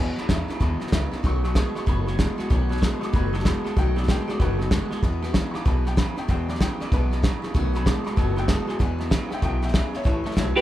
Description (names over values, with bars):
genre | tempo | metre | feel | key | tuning
rockabilly | 190 BPM | 4/4 | swing 64% on 8ths | E major | A4 = 440 Hz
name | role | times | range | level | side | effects
honky-tonk upright piano | accompaniment | 0.0-10.6 s | D#3 to D6 | -35 LUFS | left 3 dB | none
picked steel-string acoustic guitar | accompaniment | 0.0-10.6 s | E2 to F#4 | -35 LUFS | left 2 dB | none
electric guitar through a small old amp | riff | 0.0-10.6 s | E2 to G#3 | -28 LUFS | right 1 dB | none
upright bass | bass | 0.0-10.6 s | F#1 to E2 | -27 LUFS | equal | none
cloth-damped thuddy drum kit | drums | 0.2-10.6 s | hi-hat, kick drum, snare drum | -24 LUFS | equal | none
electric guitar through a small old amp | melody | 10.6 s | A4 to C#5 | -15 LUFS | right 1 dB | phaser
room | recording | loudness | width
light reverb | band playing live in one room | -21 LUFS | side -14 dB against mid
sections
0.0-10.1 A section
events
none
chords
0.0 E; 1.2 B7; 5.0 E; 7.5 B7; 8.8 E; 10.1 A